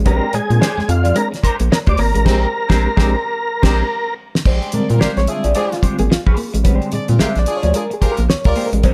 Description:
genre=funk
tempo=109 BPM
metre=4/4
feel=swing 60% on 16ths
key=Bb mixolydian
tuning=A4 = 440 Hz
part: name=clean electric guitar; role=riff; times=0.0-8.8 s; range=F3 to Bb3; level=-28 LUFS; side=equal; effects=phaser
part: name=round analog bass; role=bass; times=0.0-8.9 s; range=Ab1 to Bb2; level=-19 LUFS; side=equal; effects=none
part: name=tonewheel organ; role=melody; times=0.1-4.1 s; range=F4 to D5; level=-22 LUFS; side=equal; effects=chorus vibrato
part: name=semi-hollow electric guitar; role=accompaniment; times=0.1-8.9 s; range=Ab3 to D5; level=-28 LUFS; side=equal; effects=wah, spring reverb
part: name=reed electric piano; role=stabs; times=0.1-8.9 s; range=D3 to E5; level=-24 LUFS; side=equal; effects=fast tremolo
part: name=damped 70s drum kit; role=drums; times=0.1-8.9 s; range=crash cymbal, hi-hat, kick drum, snare drum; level=-20 LUFS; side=equal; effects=none
part: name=cowbell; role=percussion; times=0.1-2.1, 8.8-8.9 s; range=none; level=-31 LUFS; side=equal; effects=none
part: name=clear horn section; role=second line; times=2.3-8.7 s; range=C4 to D5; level=-29 LUFS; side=equal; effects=none
room=light reverb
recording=none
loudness=-16 LUFS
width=mono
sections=0.0-4.5 A section; 4.5-8.9 B section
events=band accent 2.3-4.5; drum fill 3.9-4.5; reed electric piano solo 4.5-8.9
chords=0.0 Bb13

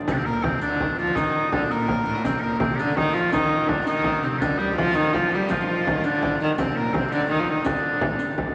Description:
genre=medieval dance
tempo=111 BPM (dotted quarters)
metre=6/8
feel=straight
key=D phrygian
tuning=A4 = 440 Hz
part: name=pipe organ, plenum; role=drone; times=0.0-8.5 s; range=D2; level=-38 LUFS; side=equal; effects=none
part: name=rich viola da gamba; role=melody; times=0.1-8.3 s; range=A2 to G3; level=-27 LUFS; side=equal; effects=none
part: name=bright shawm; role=second line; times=0.1-8.3 s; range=C4 to Bb4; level=-27 LUFS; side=equal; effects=none
part: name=frame drum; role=percussion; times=0.1-8.5 s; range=none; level=-31 LUFS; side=equal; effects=none
part: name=riq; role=percussion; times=0.1-8.4 s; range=none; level=-37 LUFS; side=equal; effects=none
room=wet cathedral reverb, RT60 6.5 s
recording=vinyl crackle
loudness=-23 LUFS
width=mono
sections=0.1-8.5 A section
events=none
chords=none

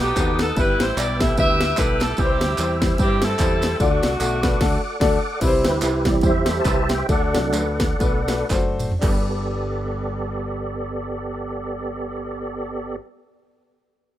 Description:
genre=uptempo gospel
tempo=111-149 BPM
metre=4/4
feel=swing 57% on 8ths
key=G major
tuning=A4 = 440 Hz
part: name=edgy saxophone section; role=melody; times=0.0-5.0 s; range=A3 to E5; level=-23 LUFS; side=equal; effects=none
part: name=clear concert grand piano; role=accompaniment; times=0.0-13.0 s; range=G2 to E5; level=-25 LUFS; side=left 3 dB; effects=none
part: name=tonewheel organ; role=sustained chords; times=0.0-13.0 s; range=E3 to E6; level=-26 LUFS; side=right 2 dB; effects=slow rotary speaker, chorus vibrato
part: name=fingered electric bass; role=bass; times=0.0-13.0 s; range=F#1 to G2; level=-27 LUFS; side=equal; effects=none
part: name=tambourine and handclaps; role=percussion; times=0.0-9.3 s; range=none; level=-33 LUFS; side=right 5 dB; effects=none
part: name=techno drum kit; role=drums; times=0.2-9.2 s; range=crash cymbal, kick drum, ride cymbal, snare drum, toms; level=-22 LUFS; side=equal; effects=none
room=light reverb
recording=rough home demo mix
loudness=-19 LUFS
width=side -12 dB against mid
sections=0.0-5.4 A section; 5.4-9.0 B section; 9.0-13.3 C section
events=band accent 4.6-5.4; slowing down 5.4-9.0; tonewheel organ solo 5.4-9.0; drum fill 8.5-9.0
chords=0.0 B7; 0.6 Em/G; 2.2 C; 3.8 D; 5.4 C; 7.1 D; 9.0 Gadd9

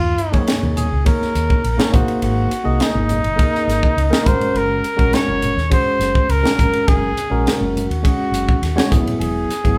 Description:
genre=electric jazz fusion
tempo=103 BPM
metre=4/4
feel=straight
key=unclear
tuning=A4 = 440 Hz
part: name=breathy trumpet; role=melody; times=0.0-9.8 s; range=Eb4 to Db5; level=-23 LUFS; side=equal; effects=none
part: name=woody fretless electric bass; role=bass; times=0.0-9.8 s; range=E1 to Gb2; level=-24 LUFS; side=equal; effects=none
part: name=crisp fusion drum kit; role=drums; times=0.2-9.8 s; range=hi-hat, kick drum, ride cymbal, snare drum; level=-21 LUFS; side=equal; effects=none
part: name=tine electric piano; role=accompaniment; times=0.3-9.8 s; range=F#3 to Eb5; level=-24 LUFS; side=equal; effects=none
part: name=congas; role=percussion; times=0.6-9.2 s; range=none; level=-31 LUFS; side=equal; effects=none
room=moderate large studio reverb, RT60 0.9 s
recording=band playing live in one room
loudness=-17 LUFS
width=mono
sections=0.0-9.8 A section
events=drum fill 8.8-9.2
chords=0.0 Eb9sus4; 1.9 Ab9; 4.3 Gbadd9; 8.9 Eadd9

